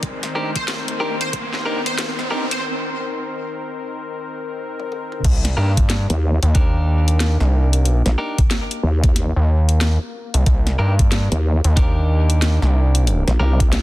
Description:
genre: glitch hop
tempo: 92 BPM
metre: 4/4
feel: swing 62% on 16ths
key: C minor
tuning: A4 = 441 Hz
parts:
  - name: warm analog pad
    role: sustained chords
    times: 0.0-13.8 s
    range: Eb3 to C5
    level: -31 LUFS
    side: left 3 dB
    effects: chorus, vintage 12-bit sampler grit, sidechain pumping
  - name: drum and bass drum kit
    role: drums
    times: 0.0-13.8 s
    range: crash cymbal, hi-hat, snare drum, toms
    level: -25 LUFS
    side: left 1 dB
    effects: overdrive, high-pass filter on hats, high-pass filter on snare, high-pass filter on toms, high-pass filter on cymbals
  - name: electronic kick drum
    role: drums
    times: 0.0-13.7 s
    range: none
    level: -17 LUFS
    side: equal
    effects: none
  - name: riser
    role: sound effects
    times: 0.0-2.6 s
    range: none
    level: -28 LUFS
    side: right 1 dB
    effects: none
  - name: clean electric guitar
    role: stabs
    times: 0.4-13.6 s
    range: D4 to Bb4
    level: -27 LUFS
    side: equal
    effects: vintage 12-bit sampler grit, sidechain pumping, digital delay
  - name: sync lead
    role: melody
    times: 0.6-2.6 s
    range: C5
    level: -29 LUFS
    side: equal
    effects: ensemble chorus, digital delay
  - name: gritty driven synth bass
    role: bass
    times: 5.2-13.2 s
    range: C2 to G2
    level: -16 LUFS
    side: equal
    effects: tube saturation
  - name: vowel-sweep wobble bass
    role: bass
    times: 6.1-13.8 s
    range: Bb1 to Eb2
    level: -16 LUFS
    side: equal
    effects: chorus, tube saturation
room: digital ambience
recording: dense, heavily limited modern master, high-pass filter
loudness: -16 LUFS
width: side -17 dB against mid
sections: 0.0-5.2 A section; 5.2-13.8 B section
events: build-up 0.0-5.2; riser 0.0-2.6; filter sweep 0.0-5.2; break 2.6-5.2; drum fill 4.8-5.2; drop 5.2-13.8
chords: 0.0 Cm7; 5.2 Cm9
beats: | 0.03 0.68 1.33 1.99 | 2.64 3.29 3.94 4.59 | 5.25 5.90 6.55 7.20 | 7.86 8.51 9.16 9.81 | 10.46 11.12 11.77 12.42 | 13.07 13.72

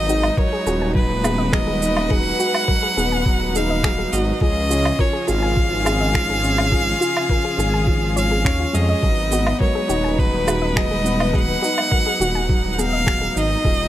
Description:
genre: piano and strings electronica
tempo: 104 BPM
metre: 4/4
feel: straight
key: G# dorian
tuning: A4 = 441 Hz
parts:
  - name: bright violin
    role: melody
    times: 0.0-13.9 s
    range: B4 to F#5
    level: -22 LUFS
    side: right 1 dB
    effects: none
  - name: clear symphonic string section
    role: sustained chords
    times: 0.0-13.9 s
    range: C#3 to B4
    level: -28 LUFS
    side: left 2 dB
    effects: sidechain pumping
  - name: dark upright piano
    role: riff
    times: 0.0-13.9 s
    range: E#3 to G#4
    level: -24 LUFS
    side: equal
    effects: none
  - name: dark detuned saw bass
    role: bass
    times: 0.0-13.9 s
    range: D#1 to E#2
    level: -22 LUFS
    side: equal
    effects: sidechain pumping
  - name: soft round pluck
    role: arpeggios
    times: 0.1-13.7 s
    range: E#4 to G#5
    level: -30 LUFS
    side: left 3 dB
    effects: chorus, cassette tape, sidechain pumping, tape echo
  - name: electronic shaker, woodblock and finger snaps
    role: drums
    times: 0.1-13.5 s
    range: none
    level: -25 LUFS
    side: right 2 dB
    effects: overdrive
  - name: electronic kick drum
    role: drums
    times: 0.4-13.8 s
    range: none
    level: -20 LUFS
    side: equal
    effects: none
room: small room ambience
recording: none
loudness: -16 LUFS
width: side -13 dB against mid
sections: 0.0-13.9 A section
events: none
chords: 0.0 G#m7; 4.4 C#; 9.0 G#m7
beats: 0.38 0.96 1.53 | 2.11 2.69 3.26 3.84 | 4.42 5.00 5.57 6.15 | 6.72 7.30 7.88 8.46 | 9.03 9.61 10.19 10.76 | 11.34 11.92 12.49 13.07 | 13.65

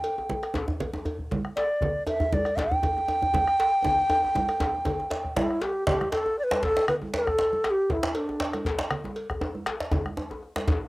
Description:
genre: west african traditional, West African drum ensemble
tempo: 118 BPM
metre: 4/4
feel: swing 54% on 16ths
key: G major pentatonic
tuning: A4 = 440 Hz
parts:
  - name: bass bansuri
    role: melody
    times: 0.0-8.7 s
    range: D4 to G5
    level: -24 LUFS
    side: equal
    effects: cassette tape
  - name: cowbell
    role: percussion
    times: 0.0-10.7 s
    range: none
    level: -36 LUFS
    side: left 1 dB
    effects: none
  - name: djembe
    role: percussion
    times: 0.2-10.8 s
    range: none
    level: -35 LUFS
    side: left 2 dB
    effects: none
  - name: congas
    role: percussion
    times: 0.3-10.9 s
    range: none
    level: -34 LUFS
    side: right 2 dB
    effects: none
  - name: bombo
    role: percussion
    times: 0.4-10.9 s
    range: none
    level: -33 LUFS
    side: left 1 dB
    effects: none
  - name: djembe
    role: percussion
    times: 0.5-10.8 s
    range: none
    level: -30 LUFS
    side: equal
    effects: none
room: moderate booth ambience, RT60 0.2 s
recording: home recording on cassette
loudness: -24 LUFS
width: side -19 dB against mid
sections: 0.0-5.9 A section; 5.9-10.9 B section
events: drum fill 3.8-5.9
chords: none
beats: 0.29 0.80 1.31 | 1.81 2.32 2.83 3.34 | 3.84 4.35 4.86 5.37 | 5.87 6.38 6.88 7.39 | 7.90 8.40 8.91 9.41 | 9.92 10.42

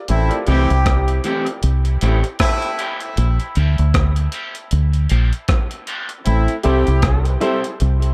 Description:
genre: dub reggae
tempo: 78 BPM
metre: 4/4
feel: swing 58% on 16ths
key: A phrygian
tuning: A4 = 440 Hz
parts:
  - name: clear horn section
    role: second line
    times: 0.1-7.4 s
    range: A3 to G4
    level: -27 LUFS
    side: equal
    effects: high-pass filter, dub echo
  - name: deep dub fingered electric bass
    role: bass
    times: 0.1-8.1 s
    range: A1 to D2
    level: -18 LUFS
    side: equal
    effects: none
  - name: breakbeat sampler-style drum kit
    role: drums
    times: 0.1-8.1 s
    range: hi-hat, kick drum, rim click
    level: -24 LUFS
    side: equal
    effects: none
  - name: electric guitar at the edge of break-up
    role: accompaniment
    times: 0.5-7.6 s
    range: E3 to G4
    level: -28 LUFS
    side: equal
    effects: vibrato effect, high-pass filter, dub echo
  - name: clear upright piano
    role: stabs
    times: 6.6-7.6 s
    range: E4 to C5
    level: -29 LUFS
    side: equal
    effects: dub echo
room: light reverb, digital ambience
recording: none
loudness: -18 LUFS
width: mono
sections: 0.0-8.1 A section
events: filter sweep 0.1-6.3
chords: 0.1 Am7; 3.2 Bb6; 6.3 Am7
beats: | 0.09 0.86 1.63 2.40 | 3.17 3.94 4.71 5.49 | 6.26 7.03 7.80

